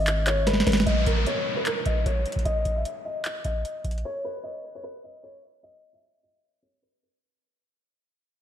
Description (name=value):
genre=hip hop, trap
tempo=151 BPM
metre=4/4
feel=half-time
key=G# minor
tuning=A4 = 439 Hz
part: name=dark concert grand piano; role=melody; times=0.0-7.2 s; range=A#4 to E5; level=-29 LUFS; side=left 1 dB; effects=low-pass filter, diffuse ambient delay
part: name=long sustained 808-style bass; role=bass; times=0.0-0.9 s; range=G#1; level=-25 LUFS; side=equal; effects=none
part: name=booming analog drum machine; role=drums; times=0.1-4.0 s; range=handclaps, hi-hat, kick drum, snare drum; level=-25 LUFS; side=equal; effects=overdrive
part: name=downlifter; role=sound effects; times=0.9-4.0 s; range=none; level=-33 LUFS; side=equal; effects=none
room=moderate lush hall reverb, RT60 1.8 s, digital ambience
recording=dreamy mix soaked in reverb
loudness=-23 LUFS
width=side -10 dB against mid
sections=0.9-7.2 A section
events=drum fill 0.5-0.9; fade-out 0.9-7.2; filter sweep on grand piano 0.9-7.2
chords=0.0 G#m; 0.9 N.C.